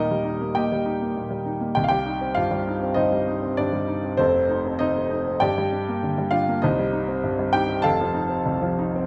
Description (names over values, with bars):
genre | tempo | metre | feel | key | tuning
classical, romantic character piece for solo piano | 99 BPM | 4/4 | rubato | unclear | A4 = 440 Hz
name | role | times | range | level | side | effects
warm grand piano | solo | 0.0-9.1 s | Eb1 to A5 | -23 LUFS | equal | none
room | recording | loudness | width
moderate large studio reverb, RT60 1.2 s | none | -23 LUFS | mono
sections
0.0-9.1 A section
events
none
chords
0.0 Eb; 1.8 Cm; 4.2 F7; 5.4 Gm; 6.6 Cm; 7.8 F7